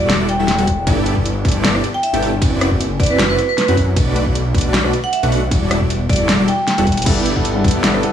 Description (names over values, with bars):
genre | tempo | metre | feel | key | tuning
future bass | 155 BPM | 4/4 | swing 54% on 16ths, half-time | G major | A4 = 440 Hz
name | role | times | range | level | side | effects
dense compressed supersaw | riff | 0.0-8.0 s | G3 to G5 | -20 LUFS | equal | cassette tape, sidechain pumping, digital delay
wide detuned saw bass | bass | 0.0-8.0 s | E1 to F#2 | -20 LUFS | equal | chorus, sidechain pumping
pop drum kit | drums | 0.1-8.1 s | crash cymbal, hi-hat, ride cymbal, rim click, snare drum | -20 LUFS | left 1 dB | none
vibraphone with hard mallets | melody | 0.3-7.0 s | B4 to G5 | -21 LUFS | right 2 dB | sidechain pumping, tape echo
electronic kick drum | drums | 0.7-7.7 s | none | -18 LUFS | equal | none
warm baby grand piano | accompaniment | 7.1-8.1 s | G3 to A4 | -20 LUFS | left 1 dB | sidechain pumping, digital delay
room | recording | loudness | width
light reverb, digital ambience | small room ambience | -14 LUFS | side -9 dB against mid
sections
0.0-8.1 A section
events
drum fill 6.9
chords
0.0 Em11; 0.9 G69; 2.4 D13/F#; 4.0 Bm7; 5.5 Em11; 7.1 G69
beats
0.10 0.48 | 0.87 1.26 1.64 2.03 | 2.42 2.81 3.19 3.58 | 3.97 4.35 4.74 5.13 | 5.51 5.90 6.29 6.68 | 7.06 7.45 7.84